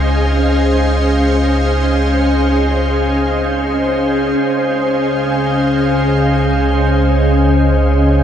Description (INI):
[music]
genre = ambient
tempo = free time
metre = none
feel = none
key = Db major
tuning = A4 = 440 Hz
[part]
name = soft additive organ-like pad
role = sustained chords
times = 0.0-8.2 s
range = Db4 to F5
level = -14 LUFS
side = equal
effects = ensemble chorus, built-in reverb
[part]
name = warm sub bass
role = bass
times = 0.0-8.2 s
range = Db2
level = -17 LUFS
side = equal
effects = none
[part]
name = bowed-like drone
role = drone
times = 5.0-8.2 s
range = Db3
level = -17 LUFS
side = equal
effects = built-in reverb
[sound]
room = wet lush hall reverb, RT60 2.5 s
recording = none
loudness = -12 LUFS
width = side -9 dB against mid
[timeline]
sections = 0.0-4.4 A section; 4.4-8.2 B section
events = none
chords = 0.0 Dbmaj7